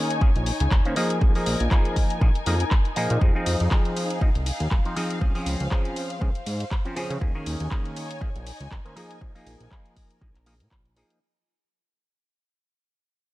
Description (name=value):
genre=filtered disco house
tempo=120 BPM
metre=4/4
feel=swing 56% on 16ths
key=unclear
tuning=A4 = 440 Hz
part: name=auto-wah clav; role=accompaniment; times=0.0-11.2 s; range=Eb3 to C5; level=-29 LUFS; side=equal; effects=phaser, sidechain pumping
part: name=muted studio string section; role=sustained chords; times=0.0-11.2 s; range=Eb4 to Ab5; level=-33 LUFS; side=left 2 dB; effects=sidechain pumping
part: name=house drum kit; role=drums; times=0.1-11.2 s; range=handclaps, hi-hat, ride cymbal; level=-33 LUFS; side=left 1 dB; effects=sidechain pumping on cymbals, studio reverb, sidechain pumping on hats
part: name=fat analog bass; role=bass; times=0.2-11.0 s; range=Eb1 to Db3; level=-26 LUFS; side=equal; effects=sidechain pumping
part: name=electronic kick drum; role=drums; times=0.2-10.8 s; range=none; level=-22 LUFS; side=equal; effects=studio reverb
room=little or no reverb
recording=dark, warm production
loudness=-22 LUFS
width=side -17 dB against mid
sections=0.0-11.2 A section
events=drop 0.0-11.2; fade-out 3.2-11.2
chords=0.0 Eb7sus4; 1.0 Bb7sus4; 3.2 Fm7; 5.2 Dbmaj7; 7.2 Eb7sus4; 9.0 Bb7sus4